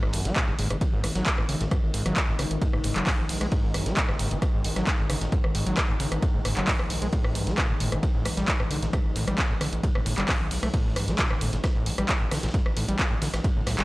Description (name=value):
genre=driving peak-time techno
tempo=133 BPM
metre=4/4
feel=straight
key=unclear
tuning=A4 = 441 Hz
part: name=overdriven acid bass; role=riff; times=0.0-13.8 s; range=F#2 to A3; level=-31 LUFS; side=equal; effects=distortion, sidechain pumping, analog delay
part: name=gritty driven synth bass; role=bass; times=0.0-13.8 s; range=F#1 to B1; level=-30 LUFS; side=equal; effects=distortion, tube saturation, sidechain pumping
part: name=swarming drone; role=drone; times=0.6-13.8 s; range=G#2 to D#3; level=-36 LUFS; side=left 1 dB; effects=built-in reverb, sidechain pumping
part: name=punchy analog drum machine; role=drums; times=0.0-13.8 s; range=handclaps, hi-hat, rim click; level=-29 LUFS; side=equal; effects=none
part: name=crunchy breakbeat drum kit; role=drums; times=0.1-13.8 s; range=hi-hat, ride cymbal, snare drum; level=-41 LUFS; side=equal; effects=none
part: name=electronic kick drum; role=drums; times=0.4-13.5 s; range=none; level=-26 LUFS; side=equal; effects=none
part: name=swell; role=sound effects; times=13.4-13.8 s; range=none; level=-52 LUFS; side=right 1 dB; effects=none
room=studio reverb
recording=dry, gritty hardware recording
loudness=-23 LUFS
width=side -20 dB against mid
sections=0.0-13.8 A section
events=none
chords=0.0 G#5; 7.1 G#maj7(no3)/G